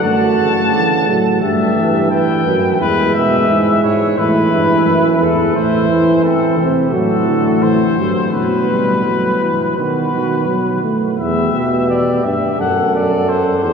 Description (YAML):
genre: classical, imitative canzona for brass ensemble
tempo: 86 BPM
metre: 4/4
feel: straight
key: E minor from 5.5 s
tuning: A4 = 441 Hz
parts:
  - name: clear trumpet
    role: melody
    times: 0.0-13.7 s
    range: A4 to A5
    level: -18 LUFS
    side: left 3 dB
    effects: none
  - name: mellow flugelhorn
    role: second line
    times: 0.0-13.7 s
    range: C4 to B4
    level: -20 LUFS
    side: right 2 dB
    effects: none
  - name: mellow euphonium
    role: accompaniment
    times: 0.0-11.2 s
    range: D3 to A3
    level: -18 LUFS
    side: right 2 dB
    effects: none
  - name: mellow bass trombone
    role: bass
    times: 0.0-13.7 s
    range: E2 to E3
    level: -18 LUFS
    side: equal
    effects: none
room: wet cathedral reverb, RT60 6.9 s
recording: heard from further back in the room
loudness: -12 LUFS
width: side -6 dB against mid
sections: 0.0-11.2 A section; 11.2-13.7 B section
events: none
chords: 0.0 F#m; 1.4 Em/G; 2.8 E; 4.2 A5; 5.5 Am; 6.9 F#dim/A; 8.3 Bsus4; 9.8 B; 11.2 Em; 12.6 F#dim